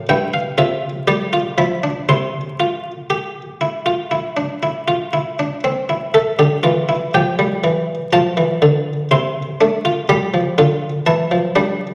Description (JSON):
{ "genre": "classical, baroque-style 3-part fugue for harpsichord", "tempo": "60 BPM", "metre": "4/4", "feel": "straight", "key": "C major", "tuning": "A4 = 440 Hz", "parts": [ { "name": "buff-stop harpsichord", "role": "solo", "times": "0.0-11.9 s", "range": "G2 to C6", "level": "-18 LUFS", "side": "equal", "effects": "none" } ], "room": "wet recital hall reverb, RT60 1.6 s", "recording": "vinyl crackle", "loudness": "-18 LUFS", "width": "mono", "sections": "0.0-6.1 A section; 6.1-11.9 B section", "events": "none", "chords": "0.1 C/G; 1.1 G7; 2.1 C; 6.1 Fmaj7sus2/D; 8.1 F; 10.1 G7" }